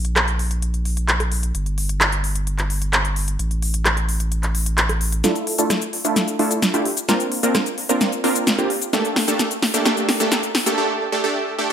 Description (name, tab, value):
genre	EDM, festival progressive house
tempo	130 BPM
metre	4/4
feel	straight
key	D minor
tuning	A4 = 440 Hz
part	saturated sub bass	bass	0.0-5.2 s	G1 to Bb1	-21 LUFS	equal	none
part	big-room dance drum kit	drums	0.0-10.8 s	handclaps, hi-hat, rim click, shaker, snare drum	-21 LUFS	equal	overdrive
part	supersaw stab	riff	5.2-11.7 s	A3 to Bb4	-20 LUFS	right 1 dB	low-pass filter, digital delay
room	moderate digital room reverb, RT60 1.1 s, digital ambience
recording	high-pass filter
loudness	-18 LUFS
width	side -8 dB against mid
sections	0.0-5.2 A section; 5.2-11.7 B section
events	build-up 5.2-11.7; drum fill 5.2-10.8; filter sweep on supersaw synth 5.2-11.7; break 10.8-11.7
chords	0.0 N.C.; 5.2 Dmadd9; 7.1 Bbadd9; 8.9 Gmadd9; 10.8 A7sus4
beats	0.16 0.62 1.09 | 1.55 2.01 2.47 2.93 | 3.39 3.85 4.32 4.78 | 5.24 5.70 6.16 6.62 | 7.09 7.55 8.01 8.47 | 8.93 9.39 9.86 10.32 | 10.78 11.24 11.70